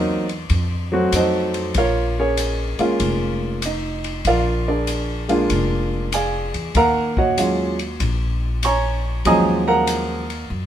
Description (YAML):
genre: jazz piano trio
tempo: 96 BPM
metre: 4/4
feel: swing 67% on 8ths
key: Eb minor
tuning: A4 = 440 Hz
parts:
  - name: warm baby grand piano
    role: melody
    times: 0.0-10.5 s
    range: F3 to Eb6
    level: -19 LUFS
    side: right 1 dB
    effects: none
  - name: upright bass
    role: bass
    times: 0.0-10.7 s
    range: F1 to Gb2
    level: -23 LUFS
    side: equal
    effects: none
  - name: open jazz drum kit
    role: drums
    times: 0.3-10.4 s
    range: hi-hat, kick drum, ride cymbal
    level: -28 LUFS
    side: left 3 dB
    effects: none
room: moderate studio reverb, RT60 0.9 s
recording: minimal, uncompressed stereo recording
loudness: -18 LUFS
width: side -10 dB against mid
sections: 0.0-10.7 A section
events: none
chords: 0.5 F7b9; 1.7 Bbm7; 4.3 Bb7; 6.8 Ebm11